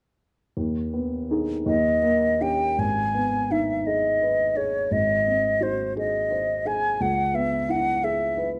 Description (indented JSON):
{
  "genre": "classical, romantic duo for flute and grand piano",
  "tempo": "50-59 BPM (dotted quarters)",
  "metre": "6/8",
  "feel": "rubato",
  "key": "G# minor",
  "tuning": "A4 = 444 Hz",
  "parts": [
    { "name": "warm baby grand piano", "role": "accompaniment", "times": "0.6-8.6 s", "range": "G#1 to B#4", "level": "-28 LUFS", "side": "equal", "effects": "none" },
    { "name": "silver concert flute", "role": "melody", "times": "1.7-8.5 s", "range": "B#4 to G#5", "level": "-25 LUFS", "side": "equal", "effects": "none" }
  ],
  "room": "moderate large studio reverb, RT60 1.4 s",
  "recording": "dark, warm production",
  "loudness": "-24 LUFS",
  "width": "mono",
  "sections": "0.6-2.8 A section; 2.8-8.6 B section",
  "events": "none",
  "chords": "0.6 G#m/D#; 1.7 D#7; 2.8 G#m; 4.9 G#7; 7.0 C#m7",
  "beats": "| 0.57 1.66 | 2.79 3.87 | 4.92 5.96 | 7.01 8.03"
}